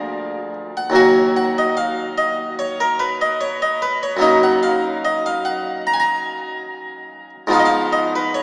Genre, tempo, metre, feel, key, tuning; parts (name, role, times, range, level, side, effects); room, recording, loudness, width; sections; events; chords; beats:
classical, baroque-style suite movement for harpsichord; 73 BPM; 4/4; rubato; Eb minor; A4 = 445 Hz
harpsichord; solo; 0.0-8.4 s; D2 to Bb5; -16 LUFS; equal
wet cathedral reverb, RT60 5.2 s; in a vast, echoing space, small speaker sound; -15 LUFS; side -34 dB against mid
0.0-8.4 A section
0.0 Bb7/D; 1.0 Ebm; 4.2 Ebm/Gb; 7.5 Fm7b5/Ab
0.13 | 0.96 1.78 2.60 3.43 | 4.24 5.07 5.88 6.71 | 7.54 8.36